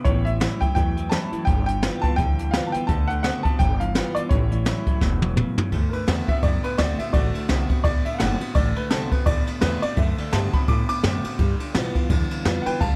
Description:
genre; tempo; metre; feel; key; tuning
rockabilly; 169 BPM; 4/4; swing 59% on 8ths; D mixolydian; A4 = 443 Hz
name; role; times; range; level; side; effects
warm upright piano; melody; 0.0-13.0 s; F#4 to D6; -30 LUFS; equal; tape echo
picked steel-string acoustic guitar; accompaniment; 0.0-13.0 s; E2 to F#4; -33 LUFS; equal; none
electric guitar through a small old amp; riff; 0.0-13.0 s; G2 to B3; -34 LUFS; equal; none
upright bass; bass; 0.1-13.0 s; E1 to B2; -28 LUFS; equal; none
jazz brush drum kit; drums; 0.1-12.9 s; hi-hat, kick drum, ride cymbal, snare drum, toms; -25 LUFS; equal; none
room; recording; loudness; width
little or no reverb; none; -22 LUFS; mono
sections
0.0-5.7 A section; 5.7-13.0 B section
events
drum fill 5.0-5.7; upright piano solo 5.7-13.0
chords
0.1 A7; 1.5 G7; 2.9 D7; 3.6 G7; 4.3 A7; 5.7 D7; 11.4 G7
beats
| 0.06 0.41 0.76 1.12 | 1.47 1.83 2.18 2.54 | 2.89 3.24 3.60 3.95 | 4.31 4.66 5.01 5.37 | 5.72 6.08 6.43 6.79 | 7.14 7.49 7.85 8.20 | 8.56 8.91 9.27 9.62 | 9.97 10.33 10.68 11.04 | 11.39 11.75 12.10 12.46 | 12.81

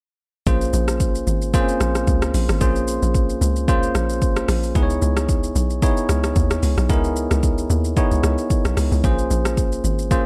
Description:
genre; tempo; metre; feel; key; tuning
amapiano; 112 BPM; 4/4; swing 55% on 16ths; Bb minor; A4 = 438 Hz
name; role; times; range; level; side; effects
bell-like tine electric piano; accompaniment; 0.5-10.3 s; Bb3 to Db5; -25 LUFS; equal; none
hollow log drum bass; bass; 0.5-10.2 s; Ab1 to Eb2; -23 LUFS; equal; none
deep house drum kit; drums; 0.5-10.2 s; hi-hat, kick drum, rim click, shaker; -24 LUFS; equal; overdrive
room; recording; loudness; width
little or no reverb; dark, warm production; -20 LUFS; mono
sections
0.5-10.3 A section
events
drop 0.5-10.3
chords
0.5 Bbm9; 4.8 Dbm9; 9.0 Bbm9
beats
| 0.47 1.00 1.54 2.07 | 2.61 3.15 3.68 4.22 | 4.75 5.29 5.82 6.36 | 6.89 7.43 7.97 8.50 | 9.04 9.57 10.11

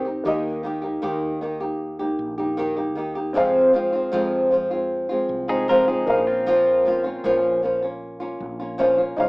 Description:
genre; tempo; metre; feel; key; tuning
acoustic pop; 77 BPM; 4/4; straight; unclear; A4 = 440 Hz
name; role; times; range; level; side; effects
flamenco guitar; accompaniment; 0.0-9.3 s; F2 to G4; -20 LUFS; equal; none
woody fretless electric bass; bass; 0.0-9.3 s; Bb1 to F2; -37 LUFS; equal; none
warm upright piano; accompaniment; 0.2-9.3 s; Bb3 to F5; -28 LUFS; left 1 dB; none
pedal steel guitar; second line; 5.5-7.4 s; C4 to Bb4; -28 LUFS; left 1 dB; none
room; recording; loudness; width
light reverb; rough home demo mix, small speaker sound; -19 LUFS; side -28 dB against mid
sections
0.3-9.3 A section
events
none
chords
0.3 Eb; 3.4 Fm; 6.1 Bbm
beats
| 0.26 1.03 1.81 2.58 | 3.36 4.13 4.91 5.68 | 6.46 7.24 8.01 8.79

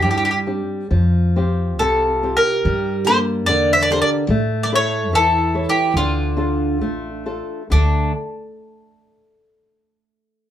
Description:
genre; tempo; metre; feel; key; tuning
fado-style ballad; 67-74 BPM; 2/4; rubato; D minor; A4 = 439 Hz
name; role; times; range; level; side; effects
mandolin; melody; 0.0-8.1 s; D4 to E5; -18 LUFS; equal; none
picked twelve-string acoustic guitar; second line; 0.0-8.1 s; A3 to C5; -27 LUFS; right 4 dB; none
flamenco guitar; accompaniment; 0.0-8.1 s; C3 to C#5; -23 LUFS; left 1 dB; none
upright bass; bass; 0.0-8.1 s; A1 to A2; -20 LUFS; equal; none
room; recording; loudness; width
moderate studio reverb, RT60 0.6 s; band playing live in one room; -16 LUFS; side -10 dB against mid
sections
0.0-7.7 A section; 7.7-9.4 B section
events
none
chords
0.0 Csus2; 0.9 Fsus2; 2.6 Gm; 4.3 A; 5.9 Dm; 7.7 D5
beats
0.03 | 0.91 1.79 | 2.65 3.47 | 4.28 5.10 | 5.93 6.80 | 7.70

